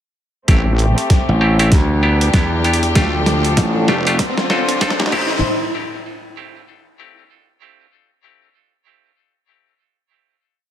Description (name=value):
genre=glitch hop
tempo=97 BPM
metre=4/4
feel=swing 60% on 16ths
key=A minor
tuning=A4 = 441 Hz
part: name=rich chamber string section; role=sustained chords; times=0.5-5.4 s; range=A2 to C5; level=-22 LUFS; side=left 2 dB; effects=sidechain pumping, low-pass filter
part: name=bright clav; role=stabs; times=0.5-5.4 s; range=A3 to A4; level=-22 LUFS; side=equal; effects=sidechain pumping, ping-pong delay
part: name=wobble bass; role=bass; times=0.5-5.4 s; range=F1 to D2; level=-17 LUFS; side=equal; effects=chorus
part: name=boom bap sampler-style drum kit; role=drums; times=0.5-5.3 s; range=crash cymbal, hi-hat, snare drum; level=-21 LUFS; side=equal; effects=none
part: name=electronic kick drum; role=drums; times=0.5-5.3 s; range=none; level=-15 LUFS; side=equal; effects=none
part: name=riser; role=sound effects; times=3.1-5.4 s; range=none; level=-25 LUFS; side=equal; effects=none
part: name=gritty slap bass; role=bass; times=1.3-5.1 s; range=A1 to E2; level=-15 LUFS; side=equal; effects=overdrive
room=light reverb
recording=high-pass filter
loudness=-13 LUFS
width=side -10 dB against mid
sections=0.5-5.4 build; 5.4-7.9 final hit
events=build-up 0.5-5.4; drum fill 0.5-5.4; filter sweep 0.5-5.4; riser 3.1-5.4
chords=0.5 Am7; 1.7 Em7; 3.0 F69; 4.2 Dm7; 5.1 Am7; 5.4 N.C.